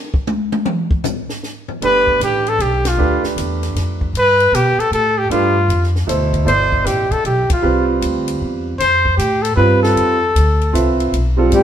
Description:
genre	modal jazz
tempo	155 BPM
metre	3/4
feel	swing 65% on 8ths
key	G mixolydian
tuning	A4 = 440 Hz
part	compact cocktail drum kit	drums	0.1-11.6 s	hi-hat, kick drum, ride cymbal, snare drum, toms	-23 LUFS	left 1 dB	none
part	clear trumpet	melody	1.8-11.6 s	F4 to C5	-15 LUFS	left 1 dB	none
part	clear grand piano	accompaniment	1.8-11.6 s	B2 to E5	-19 LUFS	right 4 dB	none
part	upright bass	bass	1.8-11.6 s	G1 to B2	-18 LUFS	equal	none
part	warm trombone	second line	11.5-11.6 s	G3	-11 LUFS	left 2 dB	none
room	wet stone room reverb, RT60 1.3 s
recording	band playing live in one room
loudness	-13 LUFS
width	side -9 dB against mid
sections	0.0-1.8 A section; 1.8-11.6 B section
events	drum solo 0.0-1.8; band accent 2.8, 7.4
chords	0.0 N.C.; 1.8 G9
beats	0.26 | 0.65 1.04 1.43 | 1.81 2.20 2.59 | 2.98 3.36 3.75 | 4.14 4.53 4.92 | 5.31 5.70 6.08 | 6.47 6.86 7.25 | 7.64 8.03 8.41 | 8.80 9.19 9.58 | 9.97 10.35 10.74 | 11.13 11.52

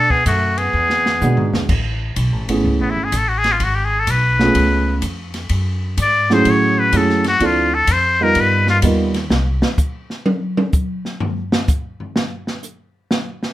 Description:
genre	jazz, small-group swing and bop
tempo	126 BPM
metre	4/4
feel	swing 67% on 8ths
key	A major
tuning	A4 = 440 Hz
part	trumpet with straight mute	melody	0.0-8.8 s	B3 to D5	-16 LUFS	left 2 dB	plate reverb
part	growling alto saxophone	second line	0.0-1.5 s	A3 to D4	-26 LUFS	right 2 dB	plate reverb
part	upright bass	bass	0.0-9.6 s	G#1 to B2	-20 LUFS	equal	none
part	open jazz drum kit	drums	0.1-13.5 s	crash cymbal, hi-hat, kick drum, ride cymbal, snare drum, toms	-22 LUFS	equal	none
part	dark upright piano	accompaniment	1.2-9.1 s	F3 to Bb4	-17 LUFS	right 2 dB	plate reverb
room	moderate studio reverb, RT60 0.6 s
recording	rough home demo mix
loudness	-15 LUFS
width	side -14 dB against mid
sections	0.0-1.7 A section; 1.7-13.5 B section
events	drum fill 0.7-1.7; muted trumpet solo 1.7-13.5; drum solo 9.3-13.5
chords	0.0 B5; 0.7 E7; 1.7 Amaj7; 3.6 C#7b13/G#; 4.5 C#7b13; 5.5 F#m9; 7.4 Dm9; 8.4 G7alt; 9.3 N.C.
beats	0.26 0.74 1.21 | 1.69 2.17 2.64 3.12 | 3.60 4.07 4.55 5.02 | 5.50 5.97 6.45 6.93 | 7.40 7.88 8.36 8.83 | 9.31 9.78 10.26 10.73 | 11.21 11.69 12.16 12.64 | 13.11

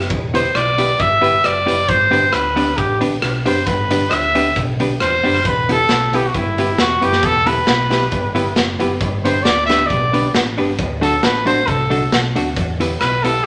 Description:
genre	ska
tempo	135 BPM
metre	4/4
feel	swing 54% on 8ths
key	E minor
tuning	A4 = 440 Hz
part	fingered electric bass	bass	0.0-13.4 s	E1 to E2	-26 LUFS	equal	none
part	raw garage drum kit	drums	0.0-13.3 s	hi-hat, kick drum, rim click, snare drum	-23 LUFS	equal	none
part	warm trumpet	melody	0.3-13.5 s	E4 to E5	-19 LUFS	equal	none
part	hollow-body jazz guitar	accompaniment	0.3-13.4 s	A3 to B4	-23 LUFS	equal	dub echo
room	wet studio reverb, RT60 0.7 s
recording	none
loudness	-16 LUFS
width	mono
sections	0.0-12.6 A section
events	trumpet solo 0.0-12.6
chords	0.0 Em; 1.9 G; 5.5 Em; 9.0 G; 10.8 D; 12.6 Em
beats	| 0.10 0.55 0.99 1.44 | 1.89 2.33 2.78 3.23 | 3.67 4.12 4.56 5.01 | 5.45 5.90 6.34 6.79 | 7.23 7.68 8.12 8.57 | 9.01 9.46 9.90 10.35 | 10.79 11.23 11.68 12.12 | 12.57 13.01 13.46

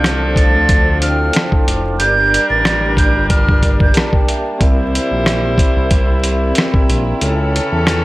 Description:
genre	hip hop, boom-bap hip-hop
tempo	92 BPM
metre	4/4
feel	swing 55% on 16ths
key	D minor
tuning	A4 = 445 Hz
part	breathy concert flute	melody	0.0-3.9 s	F6 to A6	-17 LUFS	right 2 dB	high-pass filter, low-pass filter, analog delay
part	vibraphone with soft mallets	accompaniment	0.0-8.0 s	C4 to F6	-21 LUFS	equal	cassette tape, high-pass filter, low-pass filter
part	warm studio string section	sustained chords	0.0-8.0 s	C3 to A4	-26 LUFS	left 1 dB	high-pass filter, low-pass filter
part	clear horn section	stabs	0.0-8.0 s	E3 to C5	-22 LUFS	equal	high-pass filter, low-pass filter, analog delay
part	smooth synth bass	bass	0.0-8.0 s	F1 to E2	-18 LUFS	equal	none
part	dusty soul sampler-style drum kit	drums	0.0-8.0 s	hi-hat, kick drum, rim click, snare drum	-14 LUFS	equal	none
room	small room ambience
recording	dry, gritty hardware recording, vinyl crackle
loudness	-12 LUFS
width	side -19 dB against mid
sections	0.0-8.0 A section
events	none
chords	0.0 Dm7; 2.0 Gm; 4.6 C7; 7.2 A/C#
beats	0.04 0.69 1.34 | 2.00 2.65 3.30 3.95 | 4.61 5.26 5.91 6.56 | 7.21 7.87

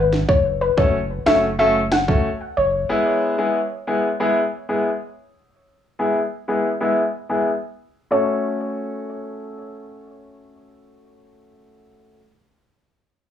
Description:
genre	dancehall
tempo	92 BPM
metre	4/4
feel	straight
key	F# minor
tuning	A4 = 438 Hz
part	soft round pluck	melody	0.0-2.7, 8.1-10.0 s	B4 to F#5	-21 LUFS	left 2 dB	chorus, low-pass filter, cassette tape, analog delay
part	saturated sub bass	bass	0.0-2.8 s	F#1 to G#1	-26 LUFS	right 1 dB	none
part	island pop drum kit	drums	0.1-2.2 s	kick drum, rim click, snare drum	-20 LUFS	right 1 dB	overdrive, cassette tape
part	bright concert grand piano	accompaniment	0.8-12.2 s	G#3 to A4	-21 LUFS	left 1 dB	low-pass filter, cassette tape
room	light reverb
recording	home recording on cassette, studio reverb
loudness	-18 LUFS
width	side -9 dB against mid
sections	0.0-8.1 A section; 8.1-10.7 B section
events	filter sweep 0.0-8.1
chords	0.0 F#m; 2.9 E; 8.1 F#m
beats	| 0.28 0.94 1.59 2.24 | 2.89 3.55 4.20 4.85 | 5.50 6.16 6.81 7.46 | 8.11 8.76 9.42 10.07

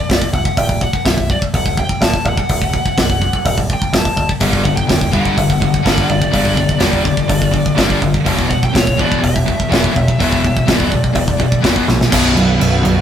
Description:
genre	heavy metal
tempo	125 BPM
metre	4/4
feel	straight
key	unclear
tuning	A4 = 440 Hz
part	high-gain lead guitar	melody	0.0-11.6 s	C#5 to A5	-21 LUFS	left 1 dB	distortion
part	growling picked electric bass	bass	0.1-13.0 s	B0 to A#1	-19 LUFS	equal	overdrive
part	modern studio drum kit	drums	0.1-13.0 s	crash cymbal, hi-hat, kick drum, snare drum	-16 LUFS	equal	none
part	heavy high-gain guitar	riff	4.4-13.0 s	B1 to G3	-19 LUFS	right 4 dB	distortion
part	sludgy distorted guitar	riff	4.4-13.0 s	B1 to G3	-18 LUFS	left 4 dB	overdrive
part	muted studio string section	sustained chords	12.1-13.0 s	D3 to B4	-22 LUFS	right 2 dB	none
room	light reverb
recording	rough rehearsal-room recording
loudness	-12 LUFS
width	side -9 dB against mid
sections	0.0-12.1 A section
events	drum fill 11.9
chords	0.0 Bm; 0.6 D; 4.4 G5; 8.3 E5; 12.1 Bm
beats	0.09 | 0.57 1.05 1.53 2.01 | 2.49 2.97 3.45 3.93 | 4.41 4.89 5.37 5.85 | 6.33 6.81 7.29 7.78 | 8.26 8.74 9.22 9.70 | 10.18 10.67 11.15 11.63 | 12.11 12.59

